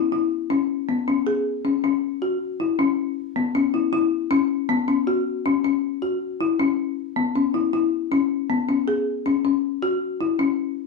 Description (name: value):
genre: progressive instrumental, progressive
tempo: 158 BPM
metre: 5/4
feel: straight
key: E major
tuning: A4 = 441 Hz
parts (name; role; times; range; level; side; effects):
- folk marimba with medium mallets; solo; 0.0-10.6 s; B3 to G#4; -20 LUFS; left 5 dB; none
room: moderate studio reverb, RT60 0.6 s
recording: studio reverb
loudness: -20 LUFS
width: side -3 dB against mid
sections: 0.5-10.9 A section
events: none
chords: none